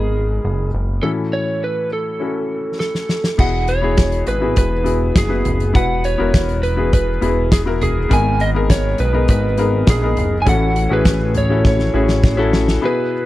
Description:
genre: piano-driven pop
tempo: 102 BPM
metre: 4/4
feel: straight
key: unclear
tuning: A4 = 440 Hz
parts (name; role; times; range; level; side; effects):
- lightly driven lead guitar; melody; 0.0-13.3 s; G#4 to G#5; -21 LUFS; right 2 dB; none
- clear upright piano; accompaniment; 0.0-13.3 s; G#2 to A#5; -20 LUFS; left 4 dB; none
- chorused synth bass; bass; 0.0-12.8 s; E1 to B1; -19 LUFS; equal; none
- loose indie drum kit; drums; 2.8-12.8 s; crash cymbal, hi-hat, kick drum, snare drum, toms; -16 LUFS; equal; none
room: little or no reverb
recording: dry, close 1970s-style studio recording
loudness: -14 LUFS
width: side -16 dB against mid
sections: 0.0-3.4 A section; 3.4-12.8 B section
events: drum fill 2.8-3.4, 11.6-12.8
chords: 0.0 G#madd9; 1.0 A6; 3.4 Eadd9; 8.1 G#madd9; 10.5 A6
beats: 0.44 | 1.03 1.62 2.21 2.80 | 3.39 3.98 4.57 5.16 | 5.75 6.34 6.93 7.52 | 8.11 8.70 9.29 9.88 | 10.47 11.05 11.64 12.23 | 12.82

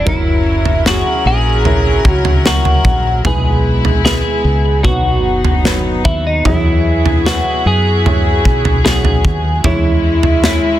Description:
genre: pop ballad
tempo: 75 BPM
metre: 4/4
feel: straight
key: E major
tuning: A4 = 440 Hz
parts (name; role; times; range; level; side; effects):
- twelve-string electric guitar; melody; 0.0-10.8 s; D#4 to G#4; -17 LUFS; equal; ping-pong delay
- dark upright piano; accompaniment; 0.0-10.8 s; B2 to C#5; -22 LUFS; right 2 dB; none
- warm studio string section; sustained chords; 0.0-10.8 s; F#3 to A#4; -22 LUFS; left 2 dB; none
- woody fretless electric bass; bass; 0.0-10.6 s; F#1 to F#2; -16 LUFS; equal; none
- modern studio drum kit; drums; 0.1-10.6 s; kick drum, snare drum, toms; -15 LUFS; equal; none
room: small room ambience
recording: dense, heavily limited modern master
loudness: -11 LUFS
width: side -13 dB against mid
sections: 0.0-10.8 A section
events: none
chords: 0.1 F#7; 3.2 E/B; 4.8 B; 6.5 Eadd9; 9.6 C#m/E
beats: | 0.07 0.86 1.66 2.45 | 3.25 4.05 4.85 5.65 | 6.46 7.26 8.05 8.85 | 9.64 10.43

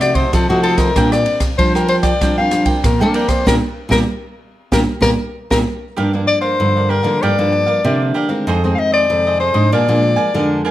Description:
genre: samba and choro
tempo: 96 BPM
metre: 4/4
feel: straight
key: Bb major, G minor from 6.0 s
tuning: A4 = 445 Hz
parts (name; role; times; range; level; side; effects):
- breathy soprano saxophone; melody; 0.0-10.6 s; Gb4 to F5; -17 LUFS; left 3 dB; plate reverb
- cavaquinho; accompaniment; 0.0-10.7 s; D4 to Ab5; -24 LUFS; right 5 dB; none
- nylon-string guitar; accompaniment; 0.0-10.7 s; F2 to Gb4; -21 LUFS; left 1 dB; none
- nylon-string guitar; bass; 0.0-10.6 s; F2 to Bb3; -18 LUFS; right 1 dB; none
- open jazz drum kit; drums; 0.0-5.7 s; kick drum, ride cymbal, rim click, snare drum; -18 LUFS; right 1 dB; none
room: moderate large studio reverb, RT60 0.9 s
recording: none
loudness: -13 LUFS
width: side -14 dB against mid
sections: 0.0-6.0 A section; 6.0-10.7 B section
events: band accent 3.5-6.0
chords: 0.0 F7b9; 1.0 Bb69; 6.0 Gm7; 8.5 Fm7; 9.7 Bb7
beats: 0.34 | 0.96 1.59 2.22 2.84 | 3.47 4.09 4.72 5.34 | 5.97 6.59 7.22 7.84 | 8.47 9.09 9.72 10.34

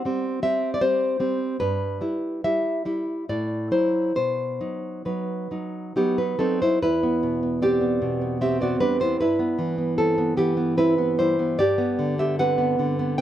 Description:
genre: romantic piece for solo classical guitar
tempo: 66-80 BPM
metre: 3/4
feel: rubato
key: E minor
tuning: A4 = 440 Hz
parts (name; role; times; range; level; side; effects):
- nylon-string guitar; solo; 0.0-13.2 s; E2 to G5; -21 LUFS; equal; slapback echo
room: little or no reverb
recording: recorded outdoors, with no room sound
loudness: -21 LUFS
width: side -11 dB against mid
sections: 0.0-6.8 A section; 6.8-13.2 B section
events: none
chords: 0.0 Am7 (rootless); 1.6 Em/G; 3.3 F#m7b5/A; 4.2 B; 6.8 Em; 9.2 Em/G; 11.6 G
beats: 0.06 0.82 | 1.60 2.44 3.28 | 4.16 5.06 5.95 | 6.82 7.62 8.40 | 9.20 9.98 10.77 | 11.58 12.39 13.18

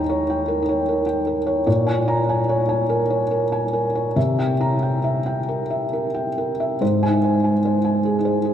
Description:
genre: neoclassical minimalist piano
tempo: 67-78 BPM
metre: 3/4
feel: rubato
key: Ab major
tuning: A4 = 440 Hz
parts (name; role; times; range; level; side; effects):
- felt-muted upright piano; solo; 0.0-8.5 s; Eb2 to Bb5; -18 LUFS; equal; none
room: wet cathedral reverb, RT60 6.9 s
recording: in a vast, echoing space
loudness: -18 LUFS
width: side -9 dB against mid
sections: 0.0-8.5 A section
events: none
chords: 0.0 Eb7; 1.7 Bbm7; 4.2 C7; 6.8 Ab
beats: 0.11 0.89 | 1.67 2.48 3.31 | 4.16 5.05 5.93 | 6.81 7.65 8.46

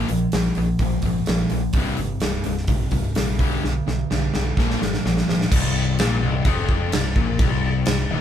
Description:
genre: classic rock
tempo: 127 BPM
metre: 4/4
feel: straight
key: unclear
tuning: A4 = 437 Hz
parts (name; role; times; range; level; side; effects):
- overdriven electric guitar; riff; 0.0-8.2 s; C2 to Bb3; -24 LUFS; left 4 dB; none
- sludgy distorted guitar; riff; 0.0-5.5 s; C2 to Bb3; -27 LUFS; right 7 dB; overdrive
- growling fingered electric bass; bass; 0.1-8.2 s; C1 to B1; -26 LUFS; equal; overdrive
- gated 80s drum kit; drums; 0.1-8.0 s; crash cymbal, hi-hat, kick drum, snare drum; -22 LUFS; equal; none
room: moderate large studio reverb, RT60 0.8 s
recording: band playing live in one room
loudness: -19 LUFS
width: side -10 dB against mid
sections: 0.0-5.5 A section; 5.5-8.2 B section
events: drum fill 3.6-5.5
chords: 0.0 Bb5; 1.8 C5; 3.4 G/B; 4.6 Bb; 5.5 N.C.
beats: 0.33 0.80 1.28 | 1.75 2.22 2.70 3.17 | 3.64 4.11 4.58 5.06 | 5.53 6.00 6.47 6.94 | 7.41 7.88

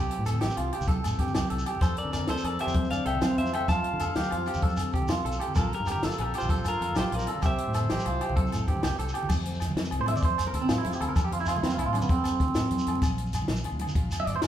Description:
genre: highlife guitar band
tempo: 128 BPM (dotted quarters)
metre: 12/8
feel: straight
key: F major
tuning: A4 = 439 Hz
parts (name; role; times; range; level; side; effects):
- picked steel-string acoustic guitar; accompaniment; 0.0-14.5 s; F2 to A4; -38 LUFS; left 5 dB; none
- clean electric guitar; arpeggios; 0.0-14.5 s; A3 to E5; -31 LUFS; right 4 dB; spring reverb
- fingered electric bass; bass; 0.0-14.5 s; G1 to D3; -32 LUFS; equal; none
- congas; percussion; 0.0-14.4 s; none; -36 LUFS; right 2 dB; none
- compact cocktail drum kit; drums; 0.1-14.5 s; crash cymbal, hi-hat, kick drum, snare drum; -30 LUFS; left 1 dB; none
- agogo bells; percussion; 0.3-14.5 s; none; -38 LUFS; left 4 dB; none
- shekere; percussion; 0.3-14.5 s; none; -37 LUFS; right 1 dB; none
- clean electric guitar; melody; 1.8-9.0 s; A4 to A5; -34 LUFS; left 1 dB; none
- mellow trumpet; second line; 1.8-9.0 s; F4 to F5; -36 LUFS; left 3 dB; none
room: wet large studio reverb, RT60 1.1 s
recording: band playing live in one room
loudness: -25 LUFS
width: side -11 dB against mid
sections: 0.0-9.3 A section; 9.3-14.5 B section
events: clean electric guitar solo 9.3-14.5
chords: 0.0 C; 1.8 F; 5.6 Bb; 7.4 C; 9.3 F; 13.0 Bb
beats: 0.41 0.88 1.35 | 1.82 2.29 2.75 3.22 | 3.69 4.16 4.63 5.10 | 5.57 6.03 6.50 6.97 | 7.44 7.91 8.37 8.84 | 9.31 9.77 10.24 10.70 | 11.17 11.63 12.10 12.57 | 13.03 13.49 13.96 14.43

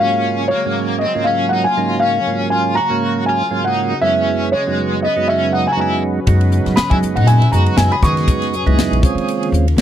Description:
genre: electric jazz fusion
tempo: 120 BPM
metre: 4/4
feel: swing 56% on 16ths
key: unclear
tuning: A4 = 440 Hz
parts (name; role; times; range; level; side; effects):
- dark concert grand piano; melody; 0.0-9.5 s; Db5 to Db6; -18 LUFS; left 1 dB; slapback echo
- biting overdriven guitar; second line; 0.0-9.5 s; Ab3 to Ab4; -23 LUFS; left 1 dB; tremolo
- percussive tonewheel organ; accompaniment; 0.0-9.8 s; Gb2 to F5; -20 LUFS; right 6 dB; slow rotary speaker
- sweeping resonant pad; sustained chords; 0.0-9.8 s; Db3 to Cb5; -25 LUFS; left 1 dB; chorus
- upright bass; bass; 6.3-9.8 s; Bb1 to Gb3; -15 LUFS; left 1 dB; none
- crisp fusion drum kit; drums; 6.3-9.8 s; hi-hat, kick drum, ride cymbal, snare drum; -17 LUFS; left 1 dB; none
room: light reverb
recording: dry, close 1970s-style studio recording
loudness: -13 LUFS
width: side -10 dB against mid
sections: 0.0-9.8 A section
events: none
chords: 0.0 Ab13sus4; 4.0 Gb13sus4; 9.0 Eb13sus4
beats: | 0.26 0.76 1.26 1.76 | 2.27 2.77 3.27 3.77 | 4.27 4.77 5.27 5.77 | 6.28 6.78 7.28 7.78 | 8.28 8.78 9.28 9.78

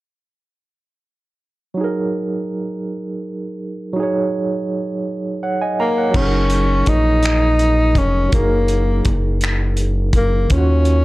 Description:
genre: slow six-eight R&B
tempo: 55 BPM (dotted quarters)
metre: 6/8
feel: straight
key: unclear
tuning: A4 = 440 Hz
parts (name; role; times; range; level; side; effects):
- barky tine electric piano; accompaniment; 1.7-11.0 s; Eb3 to Bb5; -21 LUFS; right 2 dB; medium tremolo, plate reverb
- breathy tenor saxophone; melody; 5.8-11.0 s; Bb3 to Eb4; -18 LUFS; left 1 dB; plate reverb
- round analog bass; bass; 6.1-11.0 s; F1 to Eb2; -17 LUFS; equal; none
- cloth-damped thuddy drum kit; drums; 6.1-11.0 s; crash cymbal, finger snaps, hi-hat, kick drum; -20 LUFS; equal; none
room: light reverb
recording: dark, warm production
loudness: -15 LUFS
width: side -18 dB against mid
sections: 1.8-6.1 A section; 6.1-11.0 B section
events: none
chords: 1.8 Gb69; 10.5 Ebm9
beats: | 1.78 2.87 | 3.96 5.05 | 6.14 7.24 | 8.33 9.42 | 10.51

